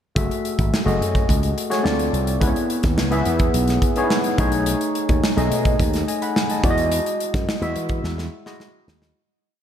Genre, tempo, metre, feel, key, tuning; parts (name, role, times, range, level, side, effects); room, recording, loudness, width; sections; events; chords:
polished 1980s jazz-funk pop; 107 BPM; 4/4; straight; F# dorian; A4 = 438 Hz
overdriven tine electric piano; accompaniment; 0.2-9.2 s; G#3 to B5; -22 LUFS; left 1 dB; lush chorus
slap bass with an envelope filter; bass; 0.2-9.1 s; F#1 to E3; -23 LUFS; equal
modern studio drum kit; drums; 0.2-9.2 s; hi-hat, kick drum, snare drum; -22 LUFS; equal
moderate lush hall reverb, RT60 2.5 s; big arena sound; -18 LUFS; side -9 dB against mid
0.2-9.2 verse
fade-out 6.9-9.2; drum fill 8.0-9.2
0.2 F#m9; 1.9 Dm7; 2.4 C#m7; 4.4 B13; 6.6 Emaj9